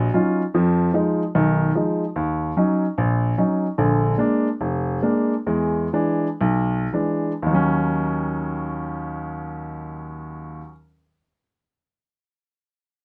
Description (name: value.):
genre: solo jazz.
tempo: 104-148 BPM.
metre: 4/4.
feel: swing 65% on 8ths.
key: Eb minor.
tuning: A4 = 442 Hz.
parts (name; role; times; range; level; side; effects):
warm baby grand piano; solo; 0.0-10.7 s; F1 to Bb4; -22 LUFS; equal; none.
room: light reverb.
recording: none.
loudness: -22 LUFS.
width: mono.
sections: 0.5-7.5 A section; 7.5-12.1 B section.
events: slowing down 3.8-7.5.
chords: 0.0 Ebm9; 0.5 Fm7b5; 2.2 Ebm7; 3.8 Bb7; 5.5 E7; 7.5 Ebm7.